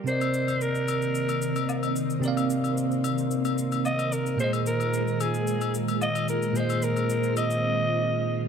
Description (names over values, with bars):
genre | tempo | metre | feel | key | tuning
amapiano | 111 BPM | 4/4 | straight | C minor | A4 = 440 Hz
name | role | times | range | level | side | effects
bell-like tine electric piano | accompaniment | 0.0-8.5 s | Bb2 to F5 | -28 LUFS | right 2 dB | fast stereo tremolo
growling alto saxophone | melody | 0.1-8.4 s | Ab4 to Eb5 | -29 LUFS | equal | tape echo
ensemble organ-string | sustained chords | 0.1-8.5 s | Eb3 to F4 | -30 LUFS | equal | phaser, ensemble chorus
shaker | drums | 0.1-7.6 s | none | -41 LUFS | left 5 dB | overdrive
agogo bells and woodblock | percussion | 0.2-7.5 s | none | -35 LUFS | left 11 dB | none
room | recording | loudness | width
light reverb | none | -24 LUFS | side -7 dB against mid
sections
0.1-8.5 A section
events
drums muted 7.6-8.5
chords
0.1 Cm9; 4.4 Bb7sus4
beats
| 0.07 0.61 1.15 1.69 | 2.23 2.77 3.31 3.85 | 4.39 4.93 5.47 6.02 | 6.56 7.10 7.64 8.18